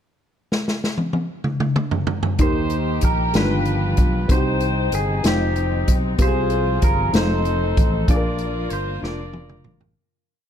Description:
slow gospel; 63 BPM (dotted quarters); 6/8; straight; A4 = 439 Hz
swinging big-band drum kit; drums; 0.5-10.0 s; hi-hat, kick drum, snare drum, toms; -20 LUFS; equal
clean electric guitar; melody; 2.4-9.7 s; G4 to D5; -28 LUFS; right 4 dB
clear horn section; melody; 2.4-9.9 s; C4 to G5; -28 LUFS; left 1 dB
warm upright piano; accompaniment; 2.4-10.0 s; G2 to C5; -24 LUFS; left 2 dB
warm studio string section; sustained chords; 2.4-10.0 s; Eb3 to G4; -32 LUFS; left 3 dB
fingered electric bass; bass; 2.4-9.9 s; F1 to Eb2; -24 LUFS; equal
light reverb; dark, warm production; -18 LUFS; side -9 dB against mid
0.5-2.4 pickup bar; 2.4-10.0 verse
drum fill 0.5-2.4, 9.0-10.0; fade-out 8.1-10.0
0.5 N.C.; 2.4 Eb; 3.3 G7b13; 4.3 Cm; 6.2 Fm/C; 7.1 F7; 8.1 Bb

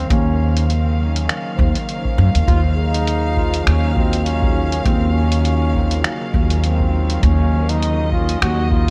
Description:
ambient dub; 101 BPM; 4/4; swing 56% on 16ths; Eb dorian; A4 = 440 Hz
clear trombone; melody; 0.0-8.9 s; C4 to Gb4; -28 LUFS; equal; dub echo
dark chamber string section; sustained chords; 0.0-8.9 s; Db3 to F5; -28 LUFS; equal
vibraphone with soft mallets; arpeggios; 0.0-8.9 s; Db4 to C5; -32 LUFS; equal; dub echo
upright bass; bass; 0.0-8.9 s; Eb2 to Gb2; -19 LUFS; equal
electronic kick drum; drums; 0.1-8.8 s; -23 LUFS; equal; studio reverb
lo-fi sampler-style drum kit; drums; 0.1-8.6 s; finger snaps, hi-hat; -27 LUFS; equal; studio reverb
light reverb, studio ambience; -17 LUFS; mono
0.0-8.9 A section
0.0 Ebm7

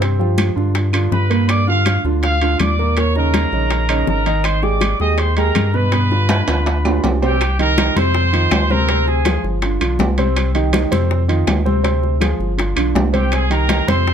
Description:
latin, salsa; 162 BPM; 4/4; straight; C minor; A4 = 440 Hz
clear concert grand piano; accompaniment; 0.0-14.1 s; Bb2 to Eb5; -20 LUFS; right 3 dB
saturated sub bass; bass; 0.0-14.1 s; G1 to G2; -18 LUFS; left 1 dB
bongos; percussion; 0.0-14.1 s; -25 LUFS; left 8 dB
congas; percussion; 0.0-14.1 s; -25 LUFS; left 2 dB
timbales; percussion; 0.0-14.1 s; -24 LUFS; right 4 dB
claves; percussion; 0.4-13.9 s; -31 LUFS; equal
bright trumpet section; melody; 1.1-9.4, 13.1-14.1 s; G4 to Eb6; -21 LUFS; right 1 dB
light reverb; close, detailed microphones; -14 LUFS; side -8 dB against mid
0.0-7.4 A section; 7.4-14.1 B section
drum fill 6.3-7.4
0.0 G7sus4; 0.8 G7; 1.5 Gm7; 3.0 Eb5; 4.4 Abmaj7; 5.9 G7; 7.4 Cm7; 8.1 F5; 8.9 Dm7b5; 9.6 G7; 10.4 Cm; 11.1 F5; 11.8 Dm7b5; 12.6 G7; 13.3 Cm7

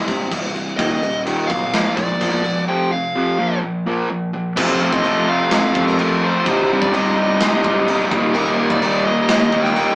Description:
quiet-loud alternative rock; 127 BPM; 4/4; straight; A4 = 441 Hz
twangy electric guitar; arpeggios; 0.0-4.6 s; C2 to Bb3; -24 LUFS; equal
fuzz picked electric bass; bass; 0.1-9.9 s; C1 to F2; -25 LUFS; equal; overdrive
big rock drum kit; drums; 0.1-9.9 s; crash cymbal, kick drum, snare drum; -22 LUFS; equal
dark smooth lead guitar; melody; 0.8-9.9 s; Bb4 to G5; -22 LUFS; equal; overdrive
fuzz guitar; riff; 0.8-9.9 s; C2 to F4; -20 LUFS; right 1 dB; distortion
distorted electric guitar; riff; 4.6-9.9 s; C2 to F4; -19 LUFS; left 1 dB; distortion
moderate small room reverb, RT60 0.5 s; rough rehearsal-room recording, small speaker sound; -15 LUFS; side -25 dB against mid
0.0-4.6 A section; 4.6-9.9 B section
0.0 C5; 0.8 Eb5; 1.7 Bb; 2.7 F5; 3.4 Bb5; 4.6 F; 6.5 Cm; 8.1 Eb

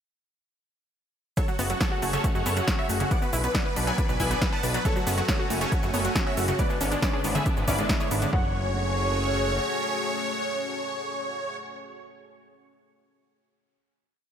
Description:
uplifting trance; 138 BPM; 4/4; straight; F# minor; A4 = 440 Hz
big supersaw lead; melody; 1.4-11.6 s; D4 to A5; -30 LUFS; equal; phaser, sidechain pumping, diffuse ambient delay
wide unison pluck; second line; 1.4-11.6 s; D4 to A5; -35 LUFS; equal; sidechain pumping, tape echo
lush unison pad; sustained chords; 1.4-11.6 s; D3 to G#5; -32 LUFS; equal; chorus, phaser, sidechain pumping
wide unison pluck; arpeggios; 1.4-8.5 s; C#3 to B4; -32 LUFS; left 1 dB; sidechain pumping, tape echo
electronic kick drum; drums; 1.4-8.4 s; -27 LUFS; equal
techno drum kit; drums; 1.4-8.3 s; hi-hat, shaker, snare drum; -31 LUFS; equal
fat analog bass; bass; 1.6-9.6 s; F#1 to B1; -29 LUFS; equal; sidechain pumping
warm grand piano; second line; 4.9-11.6 s; A3 to F#5; -35 LUFS; right 1 dB; analog chorus, ping-pong delay
moderate lush hall reverb, RT60 1.8 s; dreamy mix soaked in reverb; -23 LUFS; side -8 dB against mid
1.4-8.3 drop; 8.3-11.8 final chord
drop 1.4-8.3
1.4 F#madd9; 3.1 Bm; 4.9 F#madd9; 6.6 G#dim; 8.3 F#madd9

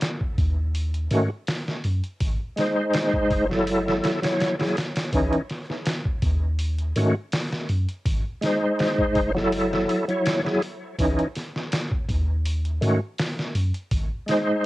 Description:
trip hop; 82 BPM; 4/4; swing 53% on 16ths; C# harmonic minor; A4 = 440 Hz
trip hop sampler-style drum kit; drums; 0.0-14.5 s; hi-hat, kick drum, snare drum; -27 LUFS; equal; studio reverb, cassette tape
soft 808-style bass; bass; 0.4-14.1 s; F#1 to G#2; -24 LUFS; equal
bright tonewheel organ; accompaniment; 1.1-14.7 s; D#3 to C#5; -22 LUFS; equal; chorus vibrato, fast rotary speaker, tremolo, vintage 12-bit sampler grit, cassette tape, tape echo
light reverb; home recording on cassette; -22 LUFS; side -17 dB against mid
0.0-5.1 A section; 5.1-14.7 B section
kick drops out 3.7-5.1
0.0 N.C.; 0.7 D#m7b5; 2.2 G#; 3.7 F#m7; 5.1 C#madd9; 6.6 D#m7b5; 8.1 G#; 9.5 F#m7; 11.0 C#madd9; 12.5 D#m7b5; 13.9 G#

